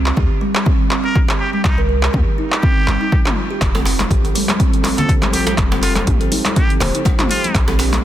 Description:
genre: afro house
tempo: 122 BPM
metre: 4/4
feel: swing 55% on 16ths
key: unclear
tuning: A4 = 445 Hz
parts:
  - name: warm 808-style bass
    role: bass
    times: 0.0-8.0 s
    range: Eb1 to Eb2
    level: -19 LUFS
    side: equal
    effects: sidechain pumping
  - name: deep house drum kit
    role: drums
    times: 0.1-8.0 s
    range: handclaps, hi-hat, toms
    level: -21 LUFS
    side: equal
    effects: overdrive
  - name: kalimba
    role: arpeggios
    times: 0.2-7.9 s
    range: G3 to C5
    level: -22 LUFS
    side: right 3 dB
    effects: sidechain pumping, ping-pong delay
  - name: electronic kick drum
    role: drums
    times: 0.2-7.7 s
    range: none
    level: -16 LUFS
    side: equal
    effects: overdrive
  - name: trumpet with straight mute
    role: melody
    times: 1.0-7.6 s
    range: Eb4 to Bb4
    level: -25 LUFS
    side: equal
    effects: ping-pong delay
  - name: warm analog pad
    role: sustained chords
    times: 3.6-8.0 s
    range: F3 to A4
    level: -25 LUFS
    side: equal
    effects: chorus, sidechain pumping
  - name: djembe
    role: percussion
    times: 3.7-8.0 s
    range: none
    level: -25 LUFS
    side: right 1 dB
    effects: none
  - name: congas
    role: percussion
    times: 3.8-8.0 s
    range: none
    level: -24 LUFS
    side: left 4 dB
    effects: none
room: little or no reverb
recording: dense, heavily limited modern master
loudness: -14 LUFS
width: side -12 dB against mid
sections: 0.0-8.0 A section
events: none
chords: 0.0 Cm; 3.6 F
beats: 0.17 0.66 1.16 | 1.65 2.14 2.63 3.12 | 3.62 4.11 4.60 5.09 | 5.58 6.07 6.57 7.06 | 7.55 8.04

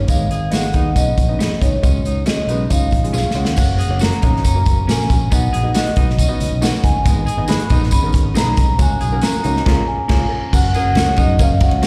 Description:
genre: uptempo 1960s-style soul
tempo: 138 BPM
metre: 4/4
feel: straight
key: F# major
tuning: A4 = 437 Hz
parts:
  - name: vibraphone with soft mallets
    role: melody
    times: 0.0-11.9 s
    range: C#5 to B5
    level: -25 LUFS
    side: equal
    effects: none
  - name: clean electric guitar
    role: riff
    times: 0.0-11.9 s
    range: G#3 to G#4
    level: -32 LUFS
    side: equal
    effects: harmonic tremolo, slapback echo
  - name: fingered electric bass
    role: bass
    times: 0.0-11.9 s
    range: F#1 to F#2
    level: -21 LUFS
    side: equal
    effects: none
  - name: warm upright piano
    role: accompaniment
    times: 0.1-11.8 s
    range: G#3 to D#5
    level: -28 LUFS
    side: equal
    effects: none
  - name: natural country drum kit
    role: drums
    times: 0.1-11.9 s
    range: crash cymbal, hi-hat, kick drum, ride cymbal, snare drum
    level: -20 LUFS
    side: equal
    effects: none
  - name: tambourine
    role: percussion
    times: 0.1-11.9 s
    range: none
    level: -34 LUFS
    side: equal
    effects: none
  - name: electric guitar through a small old amp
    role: stabs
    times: 0.5-11.9 s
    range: B3 to B4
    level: -30 LUFS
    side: equal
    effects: spring reverb, slapback echo
room: light reverb, studio ambience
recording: live gig heard through the venue's PA, recital hall reverb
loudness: -16 LUFS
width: mono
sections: 0.0-3.6 A section; 3.6-10.5 B section; 10.5-11.9 C section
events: drum fill 3.1-3.6; band accent 9.7-10.5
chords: 0.1 G#m; 1.8 C#sus4; 2.7 C#; 3.6 F#; 5.3 B; 7.1 G#m; 8.8 F#; 9.7 C#6; 10.5 F#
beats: | 0.08 0.52 0.96 1.39 | 1.83 2.27 2.70 3.14 | 3.57 4.01 4.45 4.88 | 5.32 5.75 6.19 6.62 | 7.06 7.49 7.92 8.36 | 8.79 9.23 9.66 10.10 | 10.53 10.96 11.40 11.83

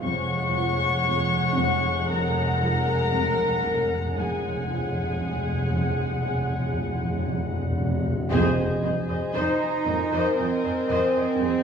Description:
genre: cinematic, suspense film score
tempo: 58 BPM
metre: 4/4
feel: straight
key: unclear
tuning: A4 = 436 Hz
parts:
  - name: warm studio violin section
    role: melody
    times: 0.0-11.6 s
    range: Ab5 to Db6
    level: -31 LUFS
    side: left 5 dB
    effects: none
  - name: warm studio violin section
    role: second line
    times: 0.0-11.6 s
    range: Ab4 to Db5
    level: -30 LUFS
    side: left 3 dB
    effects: none
  - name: rich studio viola section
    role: accompaniment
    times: 0.0-11.2 s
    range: Ab3 to Gb5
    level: -30 LUFS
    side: equal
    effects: none
  - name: warbly tape-like pad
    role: sustained chords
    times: 0.0-11.6 s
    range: C5 to Ab5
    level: -33 LUFS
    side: left 3 dB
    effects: chorus, built-in reverb
  - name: warm studio cello section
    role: riff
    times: 0.0-11.6 s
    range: F2 to F3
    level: -32 LUFS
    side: right 2 dB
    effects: none
  - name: dark studio double bass section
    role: bass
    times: 0.0-11.2 s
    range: F1 to F2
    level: -31 LUFS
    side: right 2 dB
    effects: none
  - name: warm studio cello section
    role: bass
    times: 0.0-11.6 s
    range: F2 to Eb4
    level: -30 LUFS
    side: right 3 dB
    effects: none
  - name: timpani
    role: percussion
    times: 0.0-9.8 s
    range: F2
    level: -30 LUFS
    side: left 1 dB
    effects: none
  - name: impact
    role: sound effects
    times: 8.3-11.6 s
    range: none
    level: -35 LUFS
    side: equal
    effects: none
  - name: dark studio violin section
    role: texture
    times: 8.3-11.6 s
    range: C6 to G6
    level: -41 LUFS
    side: left 2 dB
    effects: none
room: wet scoring stage reverb, RT60 2.0 s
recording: small room reverb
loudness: -22 LUFS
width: side -7 dB against mid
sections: 0.0-8.3 A section; 8.3-11.6 B section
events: timpani fill 0.0-8.3; band accent 8.3-9.4; impact 8.3-11.6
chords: 0.0 Gbsus2/F; 8.3 Fm7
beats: | 0.04 1.07 2.11 3.14 | 4.18 5.21 6.25 7.28 | 8.32 9.35 10.38 11.42

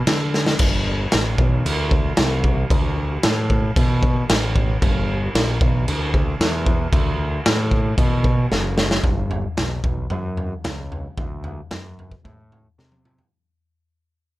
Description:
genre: garage rock duo or trio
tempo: 114 BPM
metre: 4/4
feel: straight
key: D mixolydian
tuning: A4 = 439 Hz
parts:
  - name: growling picked electric bass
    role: bass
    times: 0.1-13.2 s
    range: F#1 to D3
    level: -22 LUFS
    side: equal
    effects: overdrive
  - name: raw garage drum kit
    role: drums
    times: 0.1-13.3 s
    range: crash cymbal, kick drum, snare drum, toms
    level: -20 LUFS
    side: equal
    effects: none
room: little or no reverb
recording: none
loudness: -18 LUFS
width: side -17 dB against mid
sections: 0.0-9.1 A section; 9.1-13.3 B section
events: drum fill 0.3, 8.5-9.1, 12.8-13.3; fade-out 9.1-13.3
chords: none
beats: 0.08 | 0.61 1.13 1.66 2.18 | 2.71 3.24 3.76 4.29 | 4.82 5.35 5.87 6.40 | 6.93 7.46 7.99 8.52 | 9.05 9.58 10.12 10.65 | 11.18 11.72 12.25 12.79

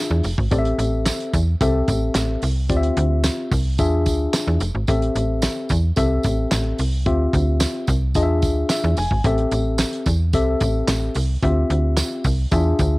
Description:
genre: early-eighties boogie funk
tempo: 110 BPM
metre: 4/4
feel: straight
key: A minor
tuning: A4 = 441 Hz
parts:
  - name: tine electric piano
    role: accompaniment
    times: 0.0-13.0 s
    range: C4 to G#5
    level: -23 LUFS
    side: left 2 dB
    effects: cassette tape
  - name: slap-like FM bass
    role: bass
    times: 0.1-13.0 s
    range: F1 to E2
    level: -20 LUFS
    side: equal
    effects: tube saturation
  - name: damped 70s drum kit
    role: drums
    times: 0.2-12.9 s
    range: handclaps, hi-hat, kick drum, snare drum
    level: -24 LUFS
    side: equal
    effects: cassette tape
  - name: tambourine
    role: percussion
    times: 0.2-12.9 s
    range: none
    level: -32 LUFS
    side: right 5 dB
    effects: none
room: small room ambience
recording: home recording on cassette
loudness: -18 LUFS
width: side -21 dB against mid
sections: 0.0-13.0 A section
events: tine electric piano fill 8.4-9.2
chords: 0.0 E7b9; 0.5 Am7; 2.7 Dm11; 3.8 E7b9; 4.9 Am7; 7.1 Dm11; 8.2 E7b9; 9.2 Am7; 11.4 Dm11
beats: | 0.52 1.06 1.61 2.15 | 2.70 3.24 3.79 4.33 | 4.88 5.42 5.97 6.52 | 7.06 7.61 8.15 8.70 | 9.24 9.79 10.33 10.88 | 11.43 11.97 12.52

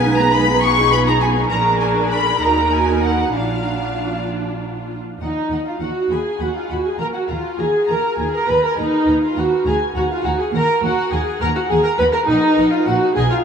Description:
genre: quick classical-period movement for string orchestra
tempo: 68 BPM (dotted quarters)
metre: 6/8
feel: rubato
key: Eb minor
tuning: A4 = 439 Hz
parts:
  - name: clear studio violin section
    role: melody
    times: 0.0-13.2 s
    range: D#5 to Db6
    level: -25 LUFS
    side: left 4 dB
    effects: none
  - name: dark studio violin section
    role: second line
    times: 0.0-13.4 s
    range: Eb5 to Db6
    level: -22 LUFS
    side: right 1 dB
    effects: none
  - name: rich studio viola section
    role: accompaniment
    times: 0.0-13.4 s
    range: Ab3 to Cb5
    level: -18 LUFS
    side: equal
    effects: none
  - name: rich studio double bass section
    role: bass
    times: 0.0-13.2 s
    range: Bb1 to Eb2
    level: -24 LUFS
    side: right 2 dB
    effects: none
  - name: warm studio cello section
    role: bass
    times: 0.0-13.2 s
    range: D2 to Cb5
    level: -26 LUFS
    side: right 4 dB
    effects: none
room: wet cathedral reverb, RT60 5.1 s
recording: in a vast, echoing space, small room ambience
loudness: -15 LUFS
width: side -7 dB against mid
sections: 0.0-5.2 A section; 5.2-13.4 A section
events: none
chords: 0.0 Abm/Cb; 0.6 Fm7b5/Cb; 1.5 Bb7; 2.4 Ebm; 3.3 Bb; 5.2 Ebm; 6.1 B6; 7.0 Eb5; 9.7 Bb; 10.5 Ebm; 12.3 F#/A#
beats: 0.62 | 1.50 2.40 | 3.34 4.27 | 5.21 6.11 | 7.00 7.89 | 8.78 9.66 | 10.54 11.41 | 12.29 13.16

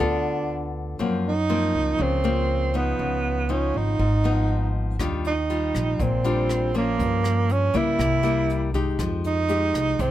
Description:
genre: bossa nova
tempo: 120 BPM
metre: 4/4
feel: straight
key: unclear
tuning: A4 = 440 Hz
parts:
  - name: breathy tenor saxophone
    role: melody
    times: 0.0-10.1 s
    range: Bb3 to E4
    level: -24 LUFS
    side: right 4 dB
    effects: none
  - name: nylon-string guitar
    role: accompaniment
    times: 0.0-10.1 s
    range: Gb2 to A4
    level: -27 LUFS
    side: left 5 dB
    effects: none
  - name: upright bass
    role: bass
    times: 0.0-10.1 s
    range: Ab1 to Db3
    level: -25 LUFS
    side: equal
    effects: none
  - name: jazz brush drum kit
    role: drums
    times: 5.0-10.1 s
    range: hi-hat, kick drum, rim click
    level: -32 LUFS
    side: right 1 dB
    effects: none
room: little or no reverb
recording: close, detailed microphones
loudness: -21 LUFS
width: side -13 dB against mid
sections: 0.0-10.1 A section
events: none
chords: 0.0 G9 (rootless); 1.0 Gbmaj7#11; 3.0 Db9; 5.0 Ebmaj9; 7.0 Gm7b5; 8.0 C7; 9.0 Fm9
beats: 0.49 | 0.99 1.49 2.00 2.50 | 3.00 3.50 4.00 4.50 | 5.00 5.50 6.00 6.50 | 7.00 7.50 8.00 8.49 | 8.99 9.49 9.99

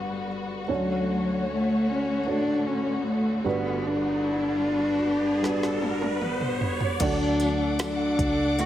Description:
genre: pop ballad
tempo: 76 BPM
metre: 4/4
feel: straight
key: D major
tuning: A4 = 440 Hz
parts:
  - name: dark cello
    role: melody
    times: 0.0-8.7 s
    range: F#3 to F#4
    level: -26 LUFS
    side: left 1 dB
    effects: none
  - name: dark upright piano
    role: accompaniment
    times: 0.0-8.7 s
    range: G1 to D5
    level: -31 LUFS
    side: right 4 dB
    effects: none
  - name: warm studio string section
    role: sustained chords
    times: 0.0-8.7 s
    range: D3 to D6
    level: -33 LUFS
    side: left 2 dB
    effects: none
  - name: riser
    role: sound effects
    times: 2.6-7.0 s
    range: none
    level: -34 LUFS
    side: right 2 dB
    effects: none
  - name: deep house drum kit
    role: drums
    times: 5.4-8.7 s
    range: crash cymbal, hi-hat, kick drum, snare drum, toms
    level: -31 LUFS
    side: equal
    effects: none
  - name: picked steel-string acoustic guitar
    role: arpeggios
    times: 7.0-8.7 s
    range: D3 to F#4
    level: -35 LUFS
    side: left 3 dB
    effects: none
  - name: vintage muted fingered electric bass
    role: bass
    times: 7.0-8.7 s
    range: C#2 to D2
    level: -31 LUFS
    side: equal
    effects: none
  - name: tambourine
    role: percussion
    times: 7.4-8.7 s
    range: none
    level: -47 LUFS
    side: right 7 dB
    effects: none
room: light reverb, small room reverb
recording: none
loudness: -23 LUFS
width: side -12 dB against mid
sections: 0.0-7.0 A section; 7.0-8.7 B section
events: riser 2.6-7.0; drum fill 5.4-7.0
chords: 0.0 Gmaj7; 0.7 Dmaj7; 3.5 Gmaj7; 7.0 D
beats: | 0.69 1.48 2.27 3.06 | 3.85 4.64 5.43 6.22 | 7.01 7.80 8.59

